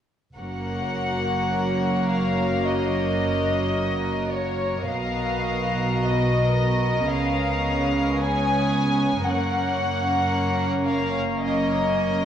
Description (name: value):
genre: classical, slow romantic movement for symphony orchestra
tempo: 54 BPM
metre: 4/4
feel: rubato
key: F# major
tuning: A4 = 440 Hz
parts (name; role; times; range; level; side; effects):
- warm studio violin section; melody; 0.4-12.2 s; C#5 to G#5; -26 LUFS; left 3 dB; none
- rich studio violin section; second line; 0.4-12.2 s; G#4 to D#5; -30 LUFS; equal; none
- rich studio viola section; accompaniment; 0.4-12.2 s; A#3 to F#4; -27 LUFS; equal; none
- dark studio double bass section; bass; 0.4-12.2 s; F#1 to C#2; -28 LUFS; right 1 dB; none
- warm studio cello section; bass; 0.4-12.2 s; F#2 to C#3; -28 LUFS; right 2 dB; none
room: wet scoring stage reverb, RT60 1.6 s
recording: worn, warbling old tape, cassette tape, warbly pitch drift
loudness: -21 LUFS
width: side -9 dB against mid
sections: 0.4-12.2 A section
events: none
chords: 0.4 F#; 4.9 Bmaj7; 7.1 C#7; 9.3 F#